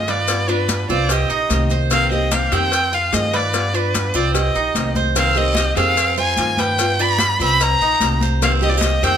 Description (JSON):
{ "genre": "latin, Cuban son and guajira", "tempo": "147 BPM", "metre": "4/4", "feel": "straight", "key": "C minor", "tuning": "A4 = 440 Hz", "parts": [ { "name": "rich violin", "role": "melody", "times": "0.0-9.2 s", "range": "B4 to B5", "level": "-19 LUFS", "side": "equal", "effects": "none" }, { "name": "nylon-string guitar", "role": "second line", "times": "0.0-9.2 s", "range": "D4 to Eb5", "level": "-28 LUFS", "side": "right 7 dB", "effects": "none" }, { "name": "flamenco guitar", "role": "accompaniment", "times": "0.0-9.2 s", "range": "C3 to G4", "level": "-26 LUFS", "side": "left 6 dB", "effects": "none" }, { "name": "Cuban tres", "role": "arpeggios", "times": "0.0-9.2 s", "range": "C4 to C5", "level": "-24 LUFS", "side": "right 6 dB", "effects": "none" }, { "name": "upright bass", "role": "bass", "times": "0.0-9.2 s", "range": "Bb1 to G2", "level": "-21 LUFS", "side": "equal", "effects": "none" }, { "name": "cowbell", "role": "percussion", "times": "0.1-9.2 s", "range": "none", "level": "-28 LUFS", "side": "left 5 dB", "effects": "none" }, { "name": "maracas", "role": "percussion", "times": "0.1-9.2 s", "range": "none", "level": "-28 LUFS", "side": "left 7 dB", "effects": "none" }, { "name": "congas", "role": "percussion", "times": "0.3-9.2 s", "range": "none", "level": "-27 LUFS", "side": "left 2 dB", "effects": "none" }, { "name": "guiro", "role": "percussion", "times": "5.2-9.2 s", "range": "none", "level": "-31 LUFS", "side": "right 9 dB", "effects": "none" } ], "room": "light reverb", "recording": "none", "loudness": "-15 LUFS", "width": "side -8 dB against mid", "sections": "0.0-9.2 A section", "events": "none", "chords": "0.3 G7; 1.1 Cm7; 2.7 F5; 3.5 G7; 4.4 Cm7; 6.0 Fm7; 6.8 G7; 7.6 Cm7" }